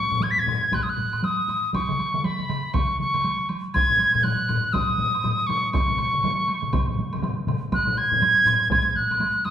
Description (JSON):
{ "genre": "japanese traditional, taiko drum ensemble", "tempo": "120 BPM", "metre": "4/4", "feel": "swing 60% on 16ths", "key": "C# suspended pentatonic", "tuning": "A4 = 440 Hz", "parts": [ { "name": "bright wooden piccolo", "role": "melody", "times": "0.0-9.5 s", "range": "B5 to B6", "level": "-22 LUFS", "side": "equal", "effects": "none" }, { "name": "taiko ensemble", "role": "percussion", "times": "0.1-9.5 s", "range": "none", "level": "-31 LUFS", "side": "right 1 dB", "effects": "none" }, { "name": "taiko ensemble", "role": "percussion", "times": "0.1-9.2 s", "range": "none", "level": "-29 LUFS", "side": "left 2 dB", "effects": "none" }, { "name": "woodblock", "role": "percussion", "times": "0.2-9.5 s", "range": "none", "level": "-36 LUFS", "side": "right 2 dB", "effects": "none" }, { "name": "taiko ensemble", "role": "percussion", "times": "0.7-8.8 s", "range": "none", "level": "-28 LUFS", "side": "equal", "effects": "none" }, { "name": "taiko ensemble", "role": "percussion", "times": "1.9-7.6 s", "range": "none", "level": "-31 LUFS", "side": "right 1 dB", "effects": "none" } ], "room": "wet large studio reverb, RT60 1.1 s", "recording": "band playing live in one room", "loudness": "-20 LUFS", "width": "side -10 dB against mid", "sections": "0.0-9.5 A section", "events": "none", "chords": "none" }